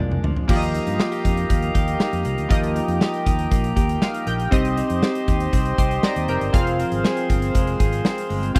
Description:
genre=1980s-style pop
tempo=119 BPM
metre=4/4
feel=straight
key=unclear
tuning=A4 = 440 Hz
part: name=chorused retro synth keys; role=accompaniment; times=0.0-8.6 s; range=Bb3 to C6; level=-28 LUFS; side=equal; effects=none
part: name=direct-recorded clean electric guitar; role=riff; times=0.0-8.6 s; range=F3 to Ab4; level=-30 LUFS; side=equal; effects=analog chorus
part: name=fingered electric bass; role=bass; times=0.0-8.6 s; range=F1 to G2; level=-27 LUFS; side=equal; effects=none
part: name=big rock drum kit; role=drums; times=0.1-8.6 s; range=crash cymbal, hi-hat, kick drum, snare drum, toms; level=-24 LUFS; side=equal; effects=none
part: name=accordion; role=sustained chords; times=0.5-8.6 s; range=G4 to C6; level=-30 LUFS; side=equal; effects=none
room=little or no reverb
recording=dry, close 1970s-style studio recording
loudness=-21 LUFS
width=mono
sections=0.5-8.6 A section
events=drum fill 0.0-0.5; synth keys fill 3.8-4.5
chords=0.5 Ebadd9; 4.5 Cm; 6.5 Fm

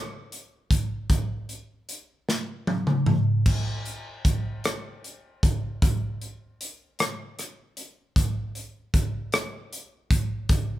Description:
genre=pop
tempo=51 BPM (dotted quarters)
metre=6/8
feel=straight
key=none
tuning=none
part: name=modern studio drum kit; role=drums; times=0.3-10.7 s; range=crash cymbal, hi-hat, kick drum, rim click, snare drum, toms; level=-24 LUFS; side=equal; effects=none
room=light reverb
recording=band playing live in one room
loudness=-24 LUFS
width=side -14 dB against mid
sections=0.0-3.5 A section; 3.5-10.8 B section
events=drum fill 2.3-3.5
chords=none

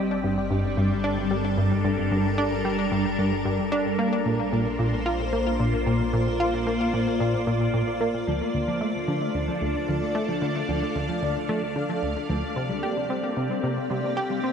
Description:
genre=ambient, sequencer-driven space music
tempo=112 BPM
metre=4/4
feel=straight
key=unclear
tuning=A4 = 440 Hz
part: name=evolving wavetable pad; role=sustained chords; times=0.0-14.5 s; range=G3 to F5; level=-27 LUFS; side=equal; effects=ensemble chorus, built-in reverb, phaser
part: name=plucky analog bass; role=riff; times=0.0-14.5 s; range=D2 to G4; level=-26 LUFS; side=equal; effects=wide subtle chorus, ping-pong delay
part: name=fat analog bass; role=bass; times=0.0-8.2 s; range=G1 to Bb1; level=-32 LUFS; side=equal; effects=none
part: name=mellow electric guitar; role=arpeggios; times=8.3-14.5 s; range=F3 to Bb3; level=-32 LUFS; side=right 1 dB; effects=auto-pan, ping-pong delay
part: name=bubbling stepped-filter texture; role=texture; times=8.3-14.5 s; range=none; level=barely audible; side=none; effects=none
room=wet huge ambient reverb, RT60 8.1 s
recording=dreamy mix soaked in reverb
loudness=-23 LUFS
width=side -7 dB against mid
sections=0.0-8.3 A section; 8.3-14.5 B section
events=none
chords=0.0 Gm; 4.0 Bbmaj7; 8.3 Dm7; 12.6 C7(no3)

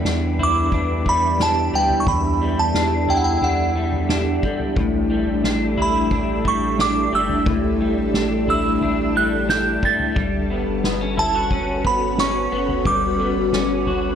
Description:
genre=dream pop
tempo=89 BPM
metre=4/4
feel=straight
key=A mixolydian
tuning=A4 = 440 Hz
part: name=ethereal airy pad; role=sustained chords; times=0.0-14.2 s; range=C#4 to E5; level=-25 LUFS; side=right 1 dB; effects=ensemble chorus, built-in reverb, phaser
part: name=electric guitar through a small old amp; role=arpeggios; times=0.0-14.2 s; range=E2 to F#4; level=-23 LUFS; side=left 2 dB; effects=ensemble chorus, analog delay
part: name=round analog bass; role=bass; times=0.0-14.2 s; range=F#1 to E2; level=-26 LUFS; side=equal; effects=none
part: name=soft-mallet drum kit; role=drums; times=0.0-14.0 s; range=kick drum, snare drum, toms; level=-26 LUFS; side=equal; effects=none
part: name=glassy synth bell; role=melody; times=0.4-14.2 s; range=F#5 to A6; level=-21 LUFS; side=right 2 dB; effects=chorus, analog delay
room=light reverb, studio reverb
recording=none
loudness=-17 LUFS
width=side -8 dB against mid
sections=0.0-14.2 A section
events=none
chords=0.0 Em7; 4.8 A7sus4; 10.2 Gmaj9#11

